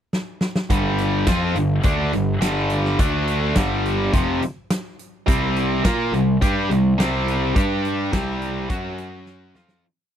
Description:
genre	classic rock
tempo	105 BPM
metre	4/4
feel	straight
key	unclear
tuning	A4 = 440 Hz
part	huge arena drum kit	drums	0.1-9.8 s	hi-hat, kick drum, snare drum	-22 LUFS	equal	none
part	tight distorted guitar	riff	0.7-9.8 s	F2 to Bb4	-21 LUFS	equal	distortion
part	fuzz picked electric bass	bass	0.7-9.8 s	F1 to Bb2	-24 LUFS	equal	overdrive
room	little or no reverb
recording	dry, close 1970s-style studio recording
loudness	-18 LUFS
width	side -9 dB against mid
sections	0.0-0.7 pickup bar; 0.7-9.8 riff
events	drum fill 0.1-0.7, 9.3-9.8; fade-out 7.6-9.8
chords	0.0 N.C.; 0.7 G5; 3.0 D5; 3.6 G5; 5.3 C5; 7.6 G5; 8.1 C5; 8.7 F#5; 9.6 F5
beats	0.13 | 0.70 1.27 1.84 2.42 | 2.99 3.56 4.13 4.70 | 5.27 5.84 6.41 6.99 | 7.56 8.13 8.70 9.28

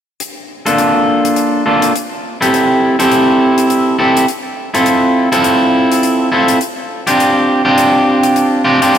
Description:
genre	glitch hop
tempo	103 BPM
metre	4/4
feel	swing 58% on 16ths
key	G dorian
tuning	A4 = 439 Hz
part	hi-hat	drums	0.2-9.0 s	none	-23 LUFS	left 5 dB	none
part	electric guitar at the edge of break-up	stabs	0.7-9.0 s	Bb3 to A4	-10 LUFS	equal	low-pass filter, tape echo
room	moderate plate reverb, RT60 2.6 s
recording	none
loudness	-10 LUFS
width	side -9 dB against mid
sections	0.2-9.0 A section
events	none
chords	0.2 Gm7 (rootless); 2.5 Am7; 4.9 Dm7 (rootless); 7.2 Csus24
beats	| 0.21 0.79 1.37 1.95 | 2.54 3.12 3.70 4.28 | 4.87 5.45 6.03 6.61 | 7.20 7.78 8.36 8.94

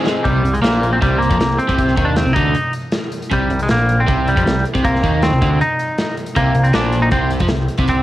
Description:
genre	indie rock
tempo	157 BPM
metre	4/4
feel	straight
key	C minor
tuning	A4 = 439 Hz
part	overdriven electric guitar	riff	0.0-8.0 s	Bb2 to Ab4	-19 LUFS	equal	cassette tape
part	big rock drum kit	drums	0.1-8.0 s	hi-hat, kick drum, snare drum	-20 LUFS	equal	cassette tape
part	semi-hollow electric guitar	melody	0.2-8.0 s	G3 to Eb4	-18 LUFS	equal	cassette tape
part	growling picked electric bass	bass	0.3-8.0 s	Bb1 to F2	-19 LUFS	equal	overdrive
room	light reverb, small room ambience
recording	home recording on cassette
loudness	-14 LUFS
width	side -15 dB against mid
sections	0.3-8.0 A section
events	drum fill 0.0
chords	0.3 Cm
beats	| 0.25 0.64 1.02 1.40 | 1.78 2.17 2.55 2.93 | 3.31 3.70 4.08 4.46 | 4.84 5.22 5.61 5.99 | 6.37 6.75 7.13 7.51 | 7.90

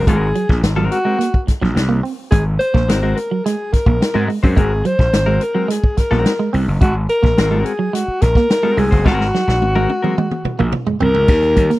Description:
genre	funk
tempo	107 BPM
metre	4/4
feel	straight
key	unclear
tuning	A4 = 441 Hz
part	breathy alto saxophone	melody	0.0-11.8 s	Gb4 to C5	-19 LUFS	left 1 dB	none
part	clean electric guitar	accompaniment	0.0-10.2 s	Ab3 to C5	-22 LUFS	left 5 dB	none
part	gritty slap bass	bass	0.0-11.7 s	Gb1 to Ab2	-17 LUFS	equal	overdrive
part	clean electric guitar	riff	0.1-11.8 s	Gb3 to C4	-22 LUFS	right 5 dB	spring reverb
part	swinging big-band drum kit	drums	0.1-11.8 s	crash cymbal, hi-hat, kick drum, snare drum, toms	-17 LUFS	equal	none
room	small room ambience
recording	dry, close 1970s-style studio recording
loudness	-14 LUFS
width	side -17 dB against mid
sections	0.0-11.3 A section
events	drum fill 9.1-11.3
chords	0.0 Ab9; 11.3 Eb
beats	| 0.07 0.63 1.20 1.76 | 2.32 2.88 3.45 4.01 | 4.57 5.13 5.70 6.26 | 6.82 7.38 7.94 8.50 | 9.06 9.62 10.18 10.73 | 11.29

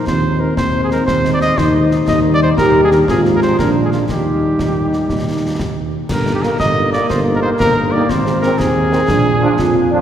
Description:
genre	military-style march for wind band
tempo	120 BPM (dotted quarters)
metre	6/8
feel	straight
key	Eb major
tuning	A4 = 440 Hz
part	mellow cornet	melody	0.0-10.0 s	F4 to Eb5	-18 LUFS	equal	none
part	mellow euphonium	second line	0.0-10.0 s	Bb3 to G4	-18 LUFS	left 1 dB	none
part	dark tuba	bass	0.1-10.0 s	G1 to F2	-18 LUFS	right 2 dB	none
part	concert snare drum, concert bass drum and clash cymbals	drums	0.1-9.7 s	none	-23 LUFS	left 1 dB	none
part	mellow French horn section	accompaniment	0.2-10.0 s	Eb3 to Ab4	-24 LUFS	equal	none
part	mellow trombone section	sustained chords	6.4-10.0 s	Eb3 to D4	-22 LUFS	right 1 dB	none
room	wet cathedral reverb, RT60 4.0 s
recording	recorded in a church or concert hall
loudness	-12 LUFS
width	side -10 dB against mid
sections	0.0-6.1 A section; 6.1-10.0 B section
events	none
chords	0.1 Ab/Eb; 2.1 Eb; 3.1 Fm/Ab; 3.6 Bb7; 4.1 Eb; 6.1 Eb/G; 8.1 Ab; 9.1 Bb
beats	| 0.08 0.58 | 1.08 1.58 | 2.08 2.58 | 3.08 3.58 | 4.08 4.59 | 5.09 5.59 | 6.09 6.59 | 7.09 7.59 | 8.09 8.59 | 9.09 9.59

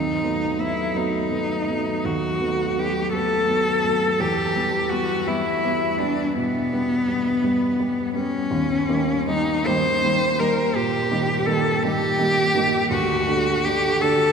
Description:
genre	classical, romantic duo for cello and grand piano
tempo	56 BPM (dotted quarters)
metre	12/8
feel	rubato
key	unclear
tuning	A4 = 440 Hz
part	rich cello	melody	0.0-14.3 s	B3 to C5	-21 LUFS	left 1 dB	none
part	warm baby grand piano	accompaniment	0.0-14.3 s	D2 to D4	-24 LUFS	right 2 dB	none
room	wet cathedral reverb, RT60 4.8 s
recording	none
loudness	-19 LUFS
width	side -6 dB against mid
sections	0.0-14.3 A section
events	none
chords	0.0 B7/D#; 4.2 Em; 8.5 Eb; 12.9 D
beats	0.96 2.05 3.14 | 4.20 5.27 6.36 7.44 | 8.52 9.68 10.76 11.83 | 12.90 14.01

